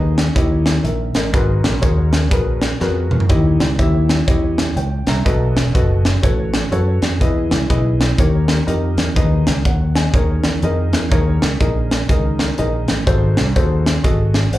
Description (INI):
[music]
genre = uptempo gospel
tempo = 123 BPM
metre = 4/4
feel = swing 62% on 8ths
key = G# minor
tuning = A4 = 437 Hz
[part]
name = warm upright piano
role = accompaniment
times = 0.0-14.6 s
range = G#2 to A#5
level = -21 LUFS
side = left 2 dB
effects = slapback echo
[part]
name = fingered electric bass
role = bass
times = 0.0-14.6 s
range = E1 to F#2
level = -17 LUFS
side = equal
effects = none
[part]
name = crisp fusion drum kit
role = drums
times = 0.2-14.6 s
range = hi-hat, kick drum, snare drum, toms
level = -18 LUFS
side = equal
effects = none
[sound]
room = light reverb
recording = live gig heard through the venue's PA, club reverb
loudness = -14 LUFS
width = side -15 dB against mid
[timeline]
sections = 0.0-14.6 A section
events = drum fill 2.8-3.3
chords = 0.4 D#7b9; 1.3 G#m9; 3.3 D#7b9; 5.3 B7; 7.2 Emaj7; 8.2 D#7; 9.2 G#m; 10.1 D#7sus4; 13.1 G#7b9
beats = 0.36 0.85 | 1.34 1.83 2.32 2.81 | 3.30 3.79 4.28 4.76 | 5.25 5.74 6.23 6.72 | 7.21 7.70 8.19 8.68 | 9.16 9.65 10.14 10.63 | 11.12 11.60 12.09 12.58 | 13.07 13.56 14.04 14.53